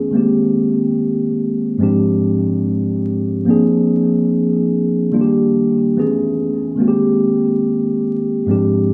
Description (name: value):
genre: hip hop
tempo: 72 BPM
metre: 4/4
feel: swing 61% on 16ths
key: unclear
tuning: A4 = 442 Hz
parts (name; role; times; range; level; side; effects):
- mellow tine electric piano; solo; 0.0-8.9 s; Ab2 to G#4; -16 LUFS; equal; cassette tape, low-pass filter, analog delay
room: moderate plate reverb, RT60 3.3 s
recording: vinyl crackle, small room ambience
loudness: -16 LUFS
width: mono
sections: 0.0-8.9 A section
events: none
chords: 0.1 Abmaj9; 1.8 Fm69/Ab; 3.5 Bb9; 5.1 Ebmaj7; 6.0 Amaj9; 6.8 Abmaj9